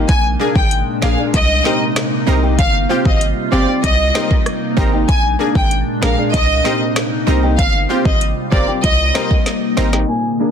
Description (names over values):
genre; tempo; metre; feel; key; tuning
dancehall; 96 BPM; 4/4; straight; C minor; A4 = 440 Hz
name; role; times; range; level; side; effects
glassy FM pad; sustained chords; 0.0-10.5 s; Bb2 to Ab4; -21 LUFS; equal; ensemble chorus, built-in reverb, sidechain pumping
flamenco guitar; arpeggios; 0.0-10.5 s; Bb3 to Ab4; -23 LUFS; left 2 dB; none
hard-hitting 808-style bass; bass; 0.0-10.0 s; G1 to C2; -18 LUFS; equal; none
warm symphonic violin section; melody; 0.1-10.2 s; D5 to Ab5; -19 LUFS; equal; tape echo
afro-pop drum kit; drums; 0.1-10.1 s; hi-hat, kick drum, rim click, snare drum; -17 LUFS; equal; none
analog pluck; accompaniment; 0.4-10.5 s; Bb2 to Bb4; -23 LUFS; right 1 dB; chorus
room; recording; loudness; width
light reverb, digital ambience; dense, heavily limited modern master, low-pass filter; -13 LUFS; side -8 dB against mid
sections
0.0-10.1 A section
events
drum fill 9.5-10.1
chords
0.1 Bb7; 1.3 Cm7; 2.6 G7sus4; 3.8 Cm7; 5.1 Bb7; 6.3 Cm7; 7.6 G7sus4; 8.8 Cm7